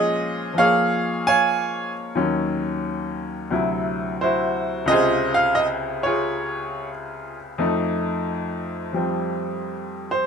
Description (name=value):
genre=solo jazz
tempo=88 BPM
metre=4/4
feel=swing 69% on 8ths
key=unclear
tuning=A4 = 440 Hz
part: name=bright upright piano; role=solo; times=0.0-10.3 s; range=Db2 to Ab5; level=-20 LUFS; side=equal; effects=none
room=moderate studio reverb, RT60 0.6 s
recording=minimal, uncompressed stereo recording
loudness=-20 LUFS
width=side -6 dB against mid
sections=0.0-10.3 A section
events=none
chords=0.0 Bbm7; 2.2 Ebm7; 3.5 D9; 4.9 Dbmaj7; 7.6 F7